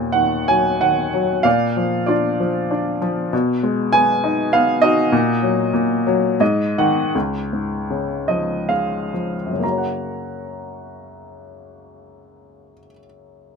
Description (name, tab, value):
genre	classical, lyrical solo piano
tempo	58-101 BPM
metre	3/4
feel	rubato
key	Eb minor, F# major from 7.1 s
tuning	A4 = 441 Hz
part	clear upright piano	solo	0.0-13.6 s	C#2 to A#5	-17 LUFS	equal	none
room	light reverb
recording	close, detailed microphones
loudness	-16 LUFS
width	side -5 dB against mid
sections	0.0-7.1 A section; 7.1-9.6 B section; 9.6-13.6 C section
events	slowing down 5.1-9.6; upright piano fill 6.1-7.1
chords	0.0 Ebm; 1.5 Bb; 3.3 Abm/Cb; 5.1 Ebm/Bb; 6.4 Ab5; 7.1 C#; 9.6 F#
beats	0.16 0.81 | 1.45 2.09 2.71 | 3.32 3.93 4.53 | 5.12 5.73 6.41 | 7.15 7.90 8.70 | 9.63 10.63 11.60 | 12.54 13.52